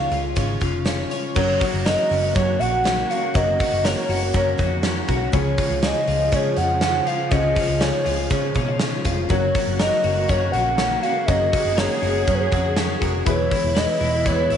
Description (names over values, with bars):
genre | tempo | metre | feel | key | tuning
jangly indie pop | 121 BPM | 4/4 | straight | F# major | A4 = 440 Hz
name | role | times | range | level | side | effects
hollow clarinet-like synth lead | melody | 0.0-14.6 s | B4 to F#5 | -23 LUFS | equal | chorus, slapback echo
dark upright piano | accompaniment | 0.0-14.6 s | E#3 to C#5 | -34 LUFS | left 11 dB | none
picked steel-string acoustic guitar | accompaniment | 0.0-14.6 s | C#3 to C#5 | -30 LUFS | right 11 dB | none
twelve-string electric guitar | arpeggios | 0.0-14.6 s | C#3 to C#5 | -27 LUFS | left 10 dB | none
vintage muted fingered electric bass | bass | 0.0-14.6 s | E1 to C#3 | -25 LUFS | equal | none
big rock drum kit | drums | 0.1-14.6 s | crash cymbal, hi-hat, kick drum, snare drum | -24 LUFS | equal | none
warm studio string section | sustained chords | 1.4-14.6 s | B2 to G#4 | -30 LUFS | equal | none
room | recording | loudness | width
moderate echo chamber reverb, RT60 2.2 s | 1960s-style stereo with parts hard left and right, nothing above 11.0 kHz | -18 LUFS | side -8 dB against mid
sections
0.0-1.4 A section; 1.4-14.6 B section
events
none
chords
0.0 C#; 1.4 F#; 5.3 C#; 9.3 F#; 13.3 E